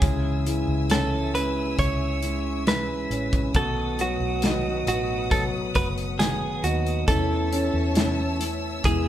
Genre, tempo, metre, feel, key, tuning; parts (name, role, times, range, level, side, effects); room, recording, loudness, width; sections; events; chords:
pop ballad; 68 BPM; 4/4; straight; A major; A4 = 439 Hz
direct-recorded clean electric guitar; melody; 0.0-9.1 s; F#4 to C#5; -28 LUFS; right 3 dB
clear concert grand piano; accompaniment; 0.0-9.1 s; B2 to E4; -30 LUFS; left 2 dB
warm studio string section; sustained chords; 0.0-9.1 s; B4 to E6; -34 LUFS; left 2 dB
mellow electric guitar; arpeggios; 0.0-9.1 s; E2 to F#4; -32 LUFS; equal
vintage muted fingered electric bass; bass; 0.0-9.1 s; F#1 to E2; -29 LUFS; equal
modern studio drum kit; drums; 0.0-9.1 s; hi-hat, kick drum, snare drum; -25 LUFS; equal
moderate stone room reverb, RT60 0.9 s; band playing live in one room; -22 LUFS; side -11 dB against mid
0.0-9.1 A section
0.0 C#m; 3.5 B7; 7.1 A/E